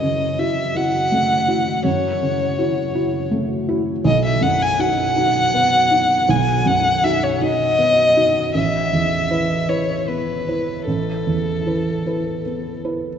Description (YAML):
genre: neoclassical piano and strings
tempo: 53 BPM (dotted quarters)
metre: 6/8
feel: rubato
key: unclear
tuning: A4 = 441 Hz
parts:
  - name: dark violin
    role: melody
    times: 0.0-12.8 s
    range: A4 to G#5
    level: -19 LUFS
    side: left 1 dB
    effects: none
  - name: felt-muted upright piano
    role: accompaniment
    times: 0.0-13.2 s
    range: A1 to B4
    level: -20 LUFS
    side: right 1 dB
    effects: none
room: wet cathedral reverb, RT60 5.3 s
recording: recorded in a church or concert hall, nothing above 7.8 kHz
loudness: -16 LUFS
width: side -8 dB against mid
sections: 0.0-13.2 A section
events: none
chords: 0.0 F#m7; 4.1 B; 8.5 Asus2